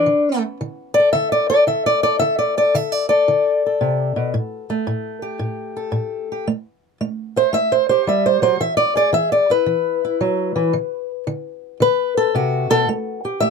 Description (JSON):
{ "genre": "acoustic country blues, solo or duo", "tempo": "113 BPM", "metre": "4/4", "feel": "swing 67% on 8ths", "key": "unclear", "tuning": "A4 = 441 Hz", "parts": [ { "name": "fingerpicked old ladder-braced acoustic guitar", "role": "solo", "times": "0.0-13.5 s", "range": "A2 to E5", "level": "-16 LUFS", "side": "left 1 dB", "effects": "none" } ], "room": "light reverb", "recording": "none", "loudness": "-16 LUFS", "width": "side -5 dB against mid", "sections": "0.0-13.5 A section", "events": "steel-string acoustic guitar solo 0.0-13.5", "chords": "0.1 D5; 4.3 A5; 8.6 E; 10.7 Bm7; 12.9 A5" }